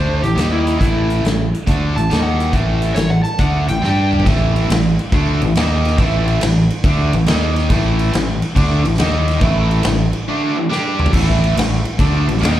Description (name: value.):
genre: blues rock power trio and southern rock.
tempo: 140 BPM.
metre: 4/4.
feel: swing 68% on 8ths.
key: unclear.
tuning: A4 = 440 Hz.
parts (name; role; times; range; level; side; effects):
overdriven slide guitar; melody; 0.0-4.3 s; E4 to A5; -23 LUFS; left 1 dB; slapback echo, tape echo.
distorted electric guitar; riff; 0.0-12.6 s; A2 to G4; -19 LUFS; equal; overdrive, slapback echo.
growling fingered electric bass; bass; 0.0-12.6 s; A1 to G2; -17 LUFS; equal; overdrive.
big rock drum kit; drums; 0.2-12.6 s; crash cymbal, hi-hat, kick drum, snare drum, toms; -20 LUFS; equal; none.
room: studio reverb.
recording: live gig heard through the venue's PA, club ambience.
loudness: -13 LUFS.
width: side -12 dB against mid.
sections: 0.0-4.3 A section; 4.3-11.1 B section; 11.1-12.6 B section.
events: drum fill 3.8-4.3, 10.7-11.1; break 10.3-11.1.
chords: 0.4 D#5; 0.8 A5; 2.1 D#5; 2.5 A5; 3.8 G5; 4.3 A5; 5.5 D#5; 6.0 A5; 7.3 D#5; 7.7 A5; 9.0 D#5; 9.4 A5; 10.7 G5; 11.1 A5.